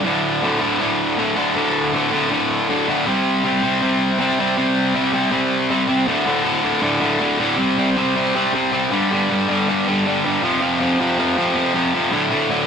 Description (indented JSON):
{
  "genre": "punk",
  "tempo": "159 BPM",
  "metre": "4/4",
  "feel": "straight",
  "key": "unclear",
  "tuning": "A4 = 440 Hz",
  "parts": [
    { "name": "distorted electric guitar", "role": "solo", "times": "0.0-12.7 s", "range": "D2 to C4", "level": "-16 LUFS", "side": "equal", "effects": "overdrive" }
  ],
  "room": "moderate small room reverb, RT60 0.5 s",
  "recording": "rough rehearsal-room recording, tube saturation",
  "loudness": "-16 LUFS",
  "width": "side -7 dB against mid",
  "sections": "0.1-6.1 A section; 6.1-12.7 B section",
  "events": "none",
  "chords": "0.1 D5; 3.1 C5; 6.1 D5; 7.6 C5; 8.9 G5; 10.4 F5; 12.1 D5"
}